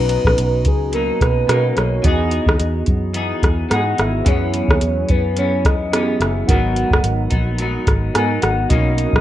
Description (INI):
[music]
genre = indie pop, bedroom pop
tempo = 108 BPM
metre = 4/4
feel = swing 55% on 16ths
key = B major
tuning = A4 = 440 Hz
[part]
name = soft octave-layered synth lead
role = melody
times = 0.0-9.2 s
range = G#4 to G#5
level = -22 LUFS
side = left 1 dB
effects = wide subtle chorus, tape echo
[part]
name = clean electric guitar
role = accompaniment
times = 0.0-9.2 s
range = F#2 to G#4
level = -24 LUFS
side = left 2 dB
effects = lush chorus, vibrato effect
[part]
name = warbly lo-fi synth keys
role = accompaniment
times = 0.0-9.2 s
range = B3 to A#5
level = -24 LUFS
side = right 3 dB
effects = chorus, cassette tape
[part]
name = vintage muted fingered electric bass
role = bass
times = 0.0-9.2 s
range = F#1 to B2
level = -20 LUFS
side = equal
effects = none
[part]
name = soft vintage rhythm box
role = drums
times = 0.1-9.2 s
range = hi-hat, kick drum, rim click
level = -18 LUFS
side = equal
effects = none
[sound]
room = moderate studio reverb, RT60 0.7 s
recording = rough home demo mix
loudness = -15 LUFS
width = side -13 dB against mid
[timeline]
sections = 0.0-9.2 A section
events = none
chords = 0.0 Bmaj7; 2.0 Emaj7; 4.3 F#7sus4; 6.5 G#m7; 8.7 Bmaj7